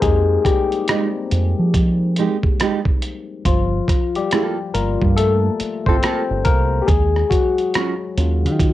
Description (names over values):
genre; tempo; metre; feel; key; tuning
R&B, neo-soul; 70 BPM; 4/4; swing 64% on 16ths; unclear; A4 = 439 Hz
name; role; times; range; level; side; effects
barky tine electric piano; accompaniment; 0.0-8.7 s; F3 to C5; -20 LUFS; left 5 dB; overdrive, phaser
deep dub fingered electric bass; bass; 0.0-8.7 s; G1 to F3; -18 LUFS; right 1 dB; none
dusty soul sampler-style drum kit; drums; 0.0-8.7 s; hi-hat, kick drum, rim click; -19 LUFS; right 1 dB; cassette tape
nylon-string guitar; second line; 0.9-7.9 s; Gb3 to A4; -21 LUFS; right 7 dB; none
room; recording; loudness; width
light reverb; home recording on cassette; -16 LUFS; side -14 dB against mid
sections
0.0-8.7 A section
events
tine electric piano solo 0.0-8.7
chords
0.0 Fm9; 3.5 Gm9; 6.9 Ebm9